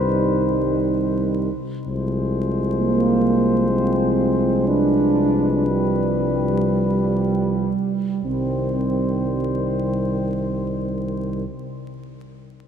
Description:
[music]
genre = classical, hymn-like piece for brass band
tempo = 44-66 BPM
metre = 3/4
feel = rubato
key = C minor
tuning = A4 = 439 Hz
[part]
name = mellow flugelhorn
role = melody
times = 0.0-11.4 s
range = B4 to C5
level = -28 LUFS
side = left 7 dB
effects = none
[part]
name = dark French horn section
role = second line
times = 0.0-11.4 s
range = G3 to Eb4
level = -22 LUFS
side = right 4 dB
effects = none
[part]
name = mellow euphonium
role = accompaniment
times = 0.0-11.4 s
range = G3 to Ab3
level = -28 LUFS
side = left 1 dB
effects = none
[part]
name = mellow trombone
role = accompaniment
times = 0.0-11.4 s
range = Eb3 to F3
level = -30 LUFS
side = right 2 dB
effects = none
[part]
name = mellow tuba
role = bass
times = 0.0-11.4 s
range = C2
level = -24 LUFS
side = left 1 dB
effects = none
[sound]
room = wet cathedral reverb, RT60 5.0 s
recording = dark, warm production, vinyl crackle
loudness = -18 LUFS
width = side -8 dB against mid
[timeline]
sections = 0.0-1.9 A section; 1.9-8.2 B section; 8.2-12.3 C section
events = slowing down 0.4-8.2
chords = 0.0 Cm; 1.9 Fm/C; 4.7 G7/C; 8.2 Cm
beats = 0.92 | 1.87 2.78 3.70 | 4.66 5.70 6.90 | 8.24 9.59 10.93

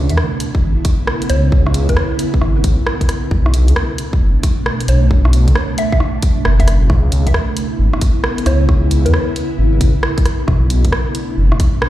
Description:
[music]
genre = future garage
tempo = 134 BPM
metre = 4/4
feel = swing 65% on 16ths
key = C# phrygian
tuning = A4 = 438 Hz
[part]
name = ethereal airy pad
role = sustained chords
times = 0.0-11.9 s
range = B2 to E4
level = -21 LUFS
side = equal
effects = ensemble chorus, built-in reverb, sidechain pumping
[part]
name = swelling detuned saw bass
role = bass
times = 0.0-11.5 s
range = F#1 to E2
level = -13 LUFS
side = equal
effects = tube saturation, sidechain pumping
[part]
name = garage drum kit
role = drums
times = 0.1-11.9 s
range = hi-hat, rim click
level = -22 LUFS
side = right 1 dB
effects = small room ambience
[part]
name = electronic kick drum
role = drums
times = 0.5-11.7 s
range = none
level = -15 LUFS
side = equal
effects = small room ambience
[part]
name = mallet-like synth pluck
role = melody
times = 1.3-9.7 s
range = B4 to E5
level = -25 LUFS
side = equal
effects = chorus, phaser, digital delay
[sound]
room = little or no reverb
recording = played on a big sound system in a bare room, large studio reverb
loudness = -12 LUFS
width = side -14 dB against mid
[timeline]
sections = 0.0-6.9 A section; 6.9-11.9 A section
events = none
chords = 0.0 C#m7; 3.3 Bm7; 6.9 C#m7; 10.5 Bm7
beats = 0.18 0.63 1.08 | 1.52 1.97 2.42 2.87 | 3.32 3.76 4.21 4.66 | 5.11 5.55 6.00 6.45 | 6.90 7.34 7.79 8.24 | 8.69 9.14 9.58 10.03 | 10.48 10.93 11.38 11.82

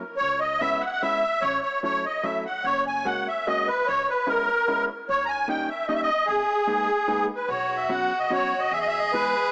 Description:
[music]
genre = musette waltz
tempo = 148 BPM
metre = 3/4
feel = rubato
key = G# minor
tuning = A4 = 440 Hz
[part]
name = hollow-body jazz guitar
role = accompaniment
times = 0.0-9.3 s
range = F#3 to G#4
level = -32 LUFS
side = equal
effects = none
[part]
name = musette accordion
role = melody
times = 0.2-9.5 s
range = G#4 to A#5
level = -22 LUFS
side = equal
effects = cassette tape
[part]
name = upright bass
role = bass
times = 0.2-9.2 s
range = F#1 to E2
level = -42 LUFS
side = equal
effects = tube saturation
[part]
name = clear violin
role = second line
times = 7.5-9.5 s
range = F#4 to G#4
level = -26 LUFS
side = equal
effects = none
[sound]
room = moderate lush hall reverb, RT60 3.2 s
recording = home recording on cassette, small speaker sound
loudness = -22 LUFS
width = side -36 dB against mid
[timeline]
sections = 0.0-7.5 A section; 7.5-9.5 B section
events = none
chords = 0.2 C#m7; 1.4 A6; 2.6 F#add9; 3.9 C#m7; 5.1 D#7; 6.3 G#madd9; 7.5 Bsus2; 8.7 E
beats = | 0.20 0.61 1.01 | 1.42 1.82 2.24 | 2.65 3.06 3.47 | 3.88 4.28 4.68 | 5.08 5.48 5.87 | 6.27 6.67 7.08 | 7.49 7.90 8.32 | 8.72 9.13

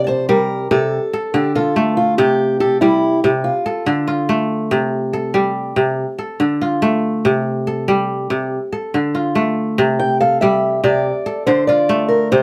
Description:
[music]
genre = west african traditional, West African string and xylophone music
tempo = 95 BPM (dotted quarters)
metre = 12/8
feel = straight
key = unclear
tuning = A4 = 440 Hz
[part]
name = fingerpicked old ladder-braced acoustic guitar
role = melody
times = 0.0-4.5, 10.0-12.4 s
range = E4 to G5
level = -19 LUFS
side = equal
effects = plate reverb
[part]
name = kora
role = arpeggios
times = 0.0-12.4 s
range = C3 to A5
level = -19 LUFS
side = equal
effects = none
[sound]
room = moderate studio reverb, RT60 0.5 s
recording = none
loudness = -17 LUFS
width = mono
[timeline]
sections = 0.0-12.4 A section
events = none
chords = 0.0 C; 0.9 Dm; 2.2 C; 3.5 Dm; 4.7 C5; 6.0 Dm; 7.3 C5; 8.5 Dm; 9.8 C; 11.1 Dm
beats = 0.29 0.92 1.55 | 2.19 2.82 3.45 4.08 | 4.72 5.35 5.99 6.62 | 7.25 7.88 8.52 9.15 | 9.78 10.42 11.05 11.68 | 12.31

